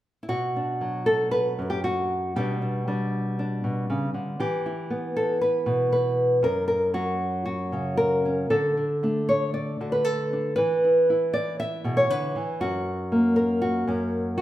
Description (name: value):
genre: folk, solo fingerstyle acoustic guitar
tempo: 117 BPM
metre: 4/4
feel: rubato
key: B minor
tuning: A4 = 440 Hz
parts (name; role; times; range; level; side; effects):
- nylon-string guitar; solo; 0.2-14.4 s; F#2 to E5; -22 LUFS; equal; none
room: wet large studio reverb, RT60 1.3 s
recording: band playing live in one room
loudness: -22 LUFS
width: side -14 dB against mid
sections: 0.3-14.4 A section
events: none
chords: 0.3 Bm; 2.4 G/B; 4.4 Em; 6.4 F#; 8.5 D5; 10.6 E; 12.6 F#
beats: | 0.29 0.81 1.33 1.85 | 2.36 2.87 3.38 3.90 | 4.41 4.91 5.42 5.92 | 6.43 6.94 7.45 7.97 | 8.50 9.02 9.54 10.05 | 10.57 11.08 11.59 12.10 | 12.60 13.11 13.62 14.12